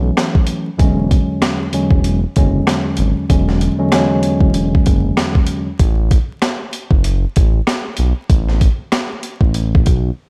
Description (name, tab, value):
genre	hip hop, boom-bap hip-hop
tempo	96 BPM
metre	4/4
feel	swing 60% on 16ths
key	unclear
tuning	A4 = 440 Hz
part	mellow tine electric piano	accompaniment	0.0-5.7 s	E2 to C#4	-19 LUFS	equal	cassette tape, high-pass filter, low-pass filter
part	smooth synth bass	bass	0.0-10.1 s	E1 to B1	-19 LUFS	equal	none
part	boom bap sampler-style drum kit	drums	0.2-10.0 s	hi-hat, kick drum, rim click, snare drum	-17 LUFS	equal	none
room	little or no reverb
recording	vinyl crackle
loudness	-15 LUFS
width	mono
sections	0.0-10.3 A section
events	none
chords	0.0 A6; 0.8 E13; 5.8 N.C.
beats	0.17 | 0.80 1.42 2.05 2.67 | 3.30 3.92 4.55 5.17 | 5.80 6.42 7.05 7.67 | 8.30 8.92 9.55